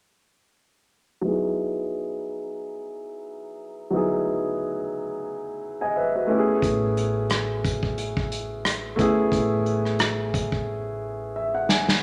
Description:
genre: R&B, neo-soul.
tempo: 89 BPM.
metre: 4/4.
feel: swing 57% on 16ths.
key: E major.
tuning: A4 = 440 Hz.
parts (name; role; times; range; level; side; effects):
warm upright piano; accompaniment; 1.2-12.0 s; F#3 to G#5; -27 LUFS; equal; low-pass filter.
upright bass; bass; 6.6-12.0 s; A1; -34 LUFS; equal; none.
unplugged drum kit; drums; 6.6-12.0 s; hi-hat, kick drum, rim click, snare drum; -27 LUFS; equal; none.
room: moderate large studio reverb, RT60 1.2 s.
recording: none.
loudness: -25 LUFS.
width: mono.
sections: 1.2-12.0 A section.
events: filter sweep on upright piano 1.2-12.0; drum fill 10.7-12.0; upright piano fill 11.0-12.0.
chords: 1.2 Emaj9; 6.3 Amaj9.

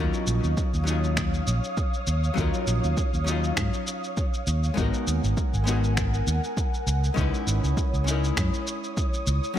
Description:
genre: sunset chillout.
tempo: 100 BPM.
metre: 4/4.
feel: swing 56% on 16ths.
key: Eb minor.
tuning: A4 = 440 Hz.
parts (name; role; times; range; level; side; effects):
archtop guitar, miked and amplified; accompaniment; 0.0-9.6 s; Gb3 to Cb5; -31 LUFS; moving between left 7 dB and right 3 dB; auto-pan, ping-pong delay.
ethereal airy pad; sustained chords; 0.0-9.6 s; Bb4 to Eb6; -33 LUFS; equal; ensemble chorus, built-in reverb.
fingered electric bass; bass; 0.0-9.4 s; Ab1 to Ab2; -24 LUFS; equal; none.
electronic shaker and finger snaps; drums; 0.1-9.5 s; none; -32 LUFS; equal; none.
electronic kick drum; drums; 0.6-9.1 s; none; -28 LUFS; equal; overdrive.
room: little or no reverb.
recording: none.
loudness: -23 LUFS.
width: side -11 dB against mid.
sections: 0.0-9.6 A section.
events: none.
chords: 0.0 Ebm9; 4.8 Abm9; 6.9 Dbm9.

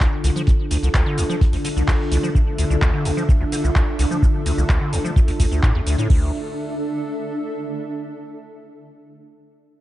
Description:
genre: acid house.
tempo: 128 BPM.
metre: 4/4.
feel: straight.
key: D minor.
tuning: A4 = 440 Hz.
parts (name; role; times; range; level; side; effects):
dark analog pad; sustained chords; 0.0-6.3 s; D3 to A4; -27 LUFS; left 1 dB; chorus, phaser, sidechain pumping.
acid bass, square; riff; 0.0-6.3 s; C2 to F3; -22 LUFS; equal; tube saturation, analog chorus.
electro analog drum machine; drums; 0.0-6.2 s; crash cymbal, handclaps, hi-hat, shaker; -29 LUFS; equal; none.
electronic kick drum; drums; 0.0-6.2 s; none; -18 LUFS; equal; none.
warm soul drum kit; drums; 0.0-2.2 s; hi-hat, snare drum; -40 LUFS; right 1 dB; none.
granular cloud pad; texture; 0.0-7.9 s; D4 to E5; -29 LUFS; right 2 dB; built-in reverb, sidechain pumping.
room: little or no reverb.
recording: dark, warm production, nothing above 10.3 kHz.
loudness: -17 LUFS.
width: side -15 dB against mid.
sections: 0.0-6.1 A section; 6.1-8.0 B section.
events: none.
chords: 0.0 Dm.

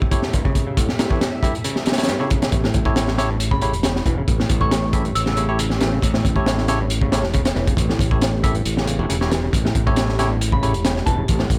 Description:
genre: breakbeat, breaks.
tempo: 137 BPM.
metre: 4/4.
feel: straight.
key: unclear.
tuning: A4 = 438 Hz.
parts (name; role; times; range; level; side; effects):
deep dark ambient pad; sustained chords; 0.0-11.6 s; A3 to F#5; -34 LUFS; equal; none.
crunchy breakbeat drum kit; drums; 0.0-11.6 s; hi-hat, kick drum, snare drum; -22 LUFS; equal; none.
bell-like tine electric piano; stabs; 0.1-10.7 s; E4 to E5; -30 LUFS; equal; dub echo.
picked electric bass; riff; 0.3-11.6 s; G2 to E3; -30 LUFS; equal; overdrive, vintage 12-bit sampler grit, dub echo.
modern bright fingered electric bass; bass; 2.5-11.6 s; E1 to A1; -25 LUFS; equal; none.
soft synth bell; melody; 3.5-5.6, 10.5-11.2 s; A5 to E6; -30 LUFS; equal; chorus, AM radio sound, dub echo.
room: studio reverb.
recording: none.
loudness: -20 LUFS.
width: mono.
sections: 0.0-2.5 A section; 2.5-11.6 B section.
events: build-up 0.0-2.5; filter sweep on drum 0.0-2.5; drop 2.5-11.6.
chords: 0.0 A7.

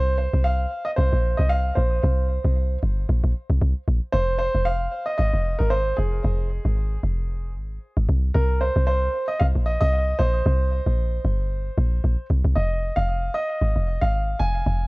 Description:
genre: amapiano.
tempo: 114 BPM.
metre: 4/4.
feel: swing 55% on 16ths.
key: F minor.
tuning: A4 = 440 Hz.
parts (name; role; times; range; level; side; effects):
warm concert grand piano; melody; 0.0-14.9 s; Ab4 to Ab5; -26 LUFS; right 1 dB; digital delay.
deep log drum bass; bass; 0.0-14.9 s; F1 to C2; -21 LUFS; equal; none.
room: small room ambience.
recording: worn, warbling old tape, cassette tape, warbly pitch drift.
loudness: -20 LUFS.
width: side -23 dB against mid.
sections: 0.0-14.9 A section.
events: none.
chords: 0.0 C5; 4.1 Fm; 8.1 C5; 12.6 Fm7.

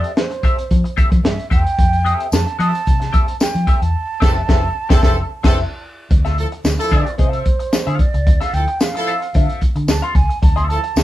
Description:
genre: funk.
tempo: 111 BPM.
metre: 4/4.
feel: straight.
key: D minor.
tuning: A4 = 441 Hz.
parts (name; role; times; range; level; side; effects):
mellow hollow concert flute; melody; 0.0-11.0 s; C5 to C6; -23 LUFS; right 3 dB; none.
clean electric guitar; accompaniment; 0.0-10.9 s; C4 to F5; -24 LUFS; left 4 dB; wah.
crunchy breakbeat drum kit; drums; 0.0-11.0 s; crash cymbal, hi-hat, kick drum, snare drum; -15 LUFS; equal; vintage 12-bit sampler grit.
vintage muted fingered electric bass; bass; 0.7-11.0 s; F1 to F3; -20 LUFS; equal; none.
tambourine; percussion; 2.3-11.0 s; none; -29 LUFS; left 3 dB; none.
warm horn section; second line; 4.2-10.8 s; E3 to A4; -23 LUFS; equal; none.
room: moderate studio reverb, RT60 0.6 s.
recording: band playing live in one room.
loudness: -14 LUFS.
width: side -14 dB against mid.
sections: 0.0-6.1 A section; 6.1-11.0 B section.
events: band accent 3.9-6.1; flute solo 6.1-11.0.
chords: 0.0 Fmaj9; 6.1 Dm9.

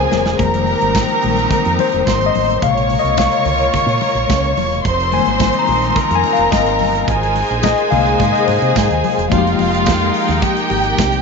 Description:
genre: disco.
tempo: 108 BPM.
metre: 4/4.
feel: straight.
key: unclear.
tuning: A4 = 439 Hz.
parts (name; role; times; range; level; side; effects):
warm studio violin section; second line; 0.0-11.2 s; F4 to Db6; -18 LUFS; right 2 dB; none.
mellow tine electric piano; accompaniment; 0.0-11.2 s; C3 to C6; -17 LUFS; left 10 dB; medium tremolo.
clear studio string section; sustained chords; 0.0-11.2 s; F3 to G5; -23 LUFS; right 2 dB; none.
fingered electric bass with an envelope filter; bass; 0.0-11.2 s; Fb1 to C3; -21 LUFS; right 3 dB; none.
modern studio drum kit; drums; 0.1-11.2 s; hi-hat, kick drum, snare drum; -22 LUFS; right 3 dB; none.
congas; percussion; 0.1-11.1 s; none; -26 LUFS; left 10 dB; none.
tambourine; percussion; 0.9-11.1 s; none; -32 LUFS; right 20 dB; none.
room: light reverb, studio reverb.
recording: 1960s-style stereo with parts hard left and right, nothing above 7.6 kHz.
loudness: -13 LUFS.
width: side -4 dB against mid.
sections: 0.0-9.3 A section; 9.3-11.2 B section.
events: drum fill 0.0-0.4; tine electric piano solo 0.0-9.3.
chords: 0.4 Fm11; 2.6 Bbm9; 4.9 Fm11; 7.1 Abadd9; 9.3 Fm11.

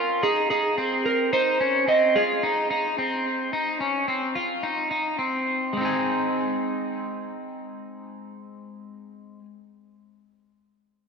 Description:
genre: dream pop.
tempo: 109 BPM.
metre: 4/4.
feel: straight.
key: Ab major.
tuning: A4 = 440 Hz.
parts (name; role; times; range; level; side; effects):
electric slide guitar; melody; 0.0-5.1 s; Ab4 to Eb5; -23 LUFS; right 3 dB; ping-pong delay.
electric guitar at the edge of break-up; arpeggios; 0.0-9.4 s; Ab3 to Ab4; -25 LUFS; left 1 dB; lush chorus, ping-pong delay.
room: wet lush hall reverb, RT60 2.8 s.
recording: rough home demo mix.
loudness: -22 LUFS.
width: side -5 dB against mid.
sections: 0.0-5.7 A section; 5.7-7.9 B section.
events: none.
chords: 0.0 Fm7; 5.7 Ab.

